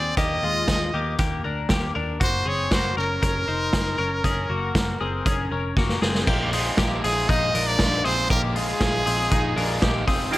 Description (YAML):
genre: jangly indie pop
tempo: 118 BPM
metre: 4/4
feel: straight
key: Bb mixolydian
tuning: A4 = 440 Hz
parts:
  - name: brilliant trumpet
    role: melody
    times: 0.0-10.0 s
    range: Ab4 to Eb5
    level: -26 LUFS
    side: equal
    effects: none
  - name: twelve-string electric guitar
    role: arpeggios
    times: 0.0-10.4 s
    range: Ab3 to C5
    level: -27 LUFS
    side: left 4 dB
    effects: none
  - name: vintage muted picked electric bass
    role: bass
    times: 0.0-10.4 s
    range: F1 to Eb2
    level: -29 LUFS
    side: equal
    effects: none
  - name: vintage drum kit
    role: drums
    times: 0.2-10.4 s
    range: crash cymbal, hi-hat, kick drum, snare drum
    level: -24 LUFS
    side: equal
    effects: none
  - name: crunchy overdriven guitar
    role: accompaniment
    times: 6.3-10.4 s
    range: F2 to F4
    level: -29 LUFS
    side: right 4 dB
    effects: spring reverb
  - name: overdriven combo organ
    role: accompaniment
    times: 10.3-10.4 s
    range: Eb4 to Ab4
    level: -23 LUFS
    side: right 5 dB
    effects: none
room: little or no reverb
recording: none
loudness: -20 LUFS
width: side -16 dB against mid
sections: 0.0-6.3 A section; 6.3-10.4 B section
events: drum fill 5.8-6.3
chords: 0.0 Eb; 2.2 Gb; 6.3 Bb7sus4